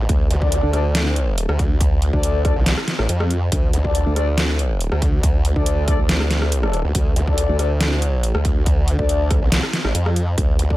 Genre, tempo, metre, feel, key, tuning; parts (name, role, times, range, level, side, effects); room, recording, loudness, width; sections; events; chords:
heavy wobble dubstep; 140 BPM; 4/4; half-time; D minor; A4 = 440 Hz
formant-sweep wobble bass; bass; 0.0-10.8 s; C2 to F2; -19 LUFS; equal; chorus, overdrive
formant-sweep wobble bass; bass; 0.1-10.6 s; A1 to D2; -19 LUFS; equal; chorus, overdrive
dubstep drum kit; drums; 0.1-10.7 s; hi-hat, rim click, snare drum; -23 LUFS; equal; overdrive
electronic kick drum; drums; 0.1-10.8 s; -20 LUFS; equal; overdrive
mellow brass ensemble; stabs; 0.4-10.8 s; D4 to D5; -26 LUFS; left 4 dB; dub echo
little or no reverb; -16 LUFS; side -17 dB against mid
0.0-10.8 A section
0.0 D5